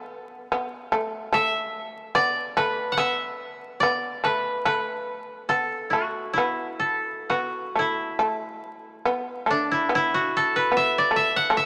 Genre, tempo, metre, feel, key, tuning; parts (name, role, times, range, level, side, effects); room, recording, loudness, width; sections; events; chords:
japanese traditional, Japanese chamber music; 63-76 BPM; 4/4; rubato; E suspended pentatonic; A4 = 440 Hz
koto; melody; 0.0-11.7 s; D4 to F#5; -26 LUFS; equal
shamisen; second line; 0.0-11.7 s; A3 to B3; -29 LUFS; equal
moderate plate reverb, RT60 3.1 s; vinyl crackle; -25 LUFS; mono
0.0-8.2 A section; 8.2-11.7 B section